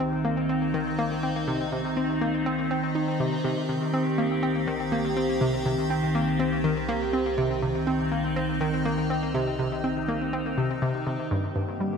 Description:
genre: ambient, sequencer-driven space music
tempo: 122 BPM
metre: 4/4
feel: straight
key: unclear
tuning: A4 = 437 Hz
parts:
  - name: evolving wavetable pad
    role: sustained chords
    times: 0.0-12.0 s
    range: D3 to G4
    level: -26 LUFS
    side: equal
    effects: phaser, built-in reverb
  - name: analog pluck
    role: riff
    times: 0.0-12.0 s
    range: G2 to Eb4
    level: -28 LUFS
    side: left 1 dB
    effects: chorus, ping-pong delay
  - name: round analog bass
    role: bass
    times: 0.0-12.0 s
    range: C2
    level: -41 LUFS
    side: equal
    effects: none
room: wet lush hall reverb, RT60 2.9 s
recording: dreamy mix soaked in reverb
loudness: -24 LUFS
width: side -6 dB against mid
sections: 0.0-12.0 A section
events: fade-in on analog synth bass 0.0-12.0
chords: 0.0 Cm; 11.3 Gm

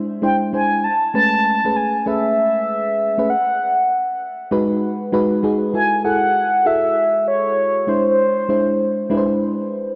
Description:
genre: R&B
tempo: 98 BPM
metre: 4/4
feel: swing 65% on 16ths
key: unclear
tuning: A4 = 440 Hz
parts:
  - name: mellow FM electric piano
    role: accompaniment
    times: 0.0-10.0 s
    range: G#3 to B#4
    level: -23 LUFS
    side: equal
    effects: chorus
  - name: mellow horn-like synth lead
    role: melody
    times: 0.2-9.3 s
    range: C5 to A5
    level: -20 LUFS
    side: equal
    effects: chorus, delay
room: wet lush hall reverb, RT60 2.6 s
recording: dark, warm production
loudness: -18 LUFS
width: mono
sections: 0.0-5.7 A section; 5.7-10.0 B section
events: none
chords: 0.0 Eaug7; 0.8 Amaj9; 3.3 G#m7; 5.7 F#m9; 7.9 E7b13

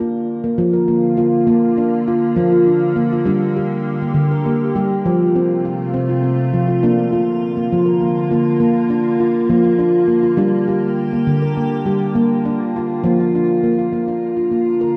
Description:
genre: world meditative, meditative tuned percussion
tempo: 68 BPM (dotted quarters)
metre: 6/8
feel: straight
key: Bb major pentatonic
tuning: A4 = 440 Hz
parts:
  - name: evolving wavetable pad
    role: sustained chords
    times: 0.2-15.0 s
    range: C3 to G4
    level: -23 LUFS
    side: equal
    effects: chorus, built-in reverb, shimmer reverb
  - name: handpan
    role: arpeggios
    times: 0.0-15.0 s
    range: D3 to Bb4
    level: -18 LUFS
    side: equal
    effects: none
room: wet echo chamber reverb, RT60 1.8 s, small room ambience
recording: dark, warm production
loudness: -17 LUFS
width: mono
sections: 0.0-13.9 A section; 13.9-15.0 B section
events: none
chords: 0.0 Bb; 3.3 Gm; 5.0 F; 6.8 Bb; 10.4 Gm; 12.2 Bb

